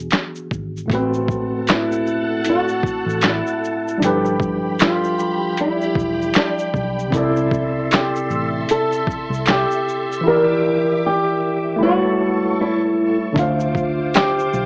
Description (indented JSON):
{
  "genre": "lo-fi hip hop",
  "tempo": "77 BPM",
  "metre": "4/4",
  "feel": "swing 56% on 16ths",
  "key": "A dorian",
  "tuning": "A4 = 442 Hz",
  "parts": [
    { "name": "flamenco guitar", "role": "melody", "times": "0.0-14.7 s", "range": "C4 to Bb4", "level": "-23 LUFS", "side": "equal", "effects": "low-pass filter, tape echo, plate reverb" },
    { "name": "tine electric piano", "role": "accompaniment", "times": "0.0-14.7 s", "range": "A2 to E5", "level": "-25 LUFS", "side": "equal", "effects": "overdrive, cassette tape, low-pass filter" },
    { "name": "vintage muted fingered electric bass", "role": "bass", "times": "0.0-14.7 s", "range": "E1 to D2", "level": "-30 LUFS", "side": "equal", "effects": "none" },
    { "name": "lo-fi sampler-style drum kit", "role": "drums", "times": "0.1-14.7 s", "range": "handclaps, hi-hat, kick drum, shaker, snare drum", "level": "-22 LUFS", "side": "equal", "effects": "none" },
    { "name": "phased string machine", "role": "sustained chords", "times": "0.9-14.7 s", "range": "F4 to D6", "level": "-29 LUFS", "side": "equal", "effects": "ensemble chorus, phaser, low-pass filter" },
    { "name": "finger snaps", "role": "percussion", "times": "1.7-14.3 s", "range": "none", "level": "-30 LUFS", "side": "equal", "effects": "none" }
  ],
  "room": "moderate small room reverb, RT60 0.5 s",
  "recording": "cassette tape, small speaker sound",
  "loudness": "-19 LUFS",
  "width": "mono",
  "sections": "0.9-14.7 A section",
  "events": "drums muted 10.2-13.4",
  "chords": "0.0 E7; 0.9 Am69; 4.0 G7; 7.1 C6; 10.2 Em7b5; 11.8 A7; 13.4 Dm7",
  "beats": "0.11 | 0.89 1.67 2.45 3.23 | 4.01 4.79 5.57 6.35 | 7.13 7.91 8.69 9.46 | 10.24 11.02 11.80 12.58 | 13.36 14.14"
}